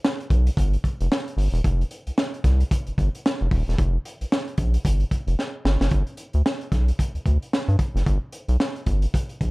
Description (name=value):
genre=funk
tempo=112 BPM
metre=4/4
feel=swing 60% on 16ths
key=G mixolydian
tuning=A4 = 441 Hz
part: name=crunchy breakbeat drum kit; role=drums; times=0.0-9.5 s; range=hi-hat, kick drum, snare drum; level=-24 LUFS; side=equal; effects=none
part: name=round analog bass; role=bass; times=0.3-9.5 s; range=Eb1 to G2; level=-20 LUFS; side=equal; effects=none
room=little or no reverb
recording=dark, warm production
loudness=-21 LUFS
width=side -24 dB against mid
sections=0.0-5.9 A section; 5.9-9.5 B section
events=drum fill 5.4-5.9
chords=none